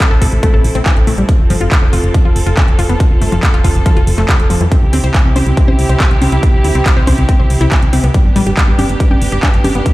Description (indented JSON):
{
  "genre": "uplifting trance",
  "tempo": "140 BPM",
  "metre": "4/4",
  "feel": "straight",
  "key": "unclear",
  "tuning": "A4 = 439 Hz",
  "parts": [
    { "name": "rich studio string section", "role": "sustained chords", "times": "0.0-9.9 s", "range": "B3 to A4", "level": "-20 LUFS", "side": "right 1 dB", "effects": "sidechain pumping, low-pass filter" },
    { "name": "big-room dance drum kit", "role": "drums", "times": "0.0-9.9 s", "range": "congas, handclaps, hi-hat", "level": "-19 LUFS", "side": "equal", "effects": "studio ambience" },
    { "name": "electronic kick drum", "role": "drums", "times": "0.0-9.9 s", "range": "none", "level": "-11 LUFS", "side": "equal", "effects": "studio ambience" },
    { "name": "wide unison pluck", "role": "arpeggios", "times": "0.1-9.9 s", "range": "F2 to C5", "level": "-20 LUFS", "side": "left 2 dB", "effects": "sidechain pumping, digital delay" },
    { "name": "solid FM bass", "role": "bass", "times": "0.1-9.8 s", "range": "F1 to F2", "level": "-14 LUFS", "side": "equal", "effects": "sidechain pumping" }
  ],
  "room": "light reverb",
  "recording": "played on a big sound system in a bare room, stone room reverb",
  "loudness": "-9 LUFS",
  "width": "side -18 dB against mid",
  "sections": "0.0-9.9 A section",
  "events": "filter sweep on string section 0.0-9.9",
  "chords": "0.0 Am; 1.3 F; 4.7 C; 8.1 G"
}